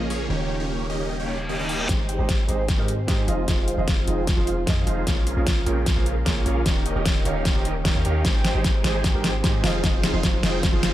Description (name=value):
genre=future bass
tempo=151 BPM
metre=4/4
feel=half-time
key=Ab major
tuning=A4 = 440 Hz
part: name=felt-muted upright piano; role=accompaniment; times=0.0-10.8 s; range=Eb3 to Eb5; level=-31 LUFS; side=right 4 dB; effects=sidechain pumping, tape echo
part: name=airy breathy pad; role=sustained chords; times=0.0-10.9 s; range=Db3 to G4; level=-36 LUFS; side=equal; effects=none
part: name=concert harp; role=arpeggios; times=0.0-10.9 s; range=F4 to G5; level=-35 LUFS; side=equal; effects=sidechain pumping, low-pass filter, tape echo
part: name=supersaw chords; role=riff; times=0.0-10.9 s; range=Eb3 to Ab5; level=-29 LUFS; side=right 1 dB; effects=phaser, sidechain pumping, low-pass filter
part: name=warm 808-style bass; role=bass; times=0.0-10.9 s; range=Eb1 to Ab2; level=-27 LUFS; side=equal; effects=sidechain pumping
part: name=dubstep drum kit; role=drums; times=0.1-10.9 s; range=hi-hat, snare drum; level=-26 LUFS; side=left 1 dB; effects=overdrive
part: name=reverse cymbal and riser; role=sound effects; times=1.2-10.9 s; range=none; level=-36 LUFS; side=equal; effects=none
part: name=electronic kick drum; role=drums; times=1.9-10.7 s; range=none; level=-24 LUFS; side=equal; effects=none
room=digital ambience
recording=dark, warm production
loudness=-20 LUFS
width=side -13 dB against mid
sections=0.0-1.9 A section; 1.9-10.9 B section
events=reverse cymbal 1.2-1.9; build-up 1.9-10.9; drum fill 1.9-10.9; filter sweep on supersaw synth 1.9-10.9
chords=0.3 Eb7; 1.9 Abmaj7; 3.3 Fm7; 5.1 Bbm7; 6.7 Eb7; 8.2 Abmaj7; 9.6 Fm7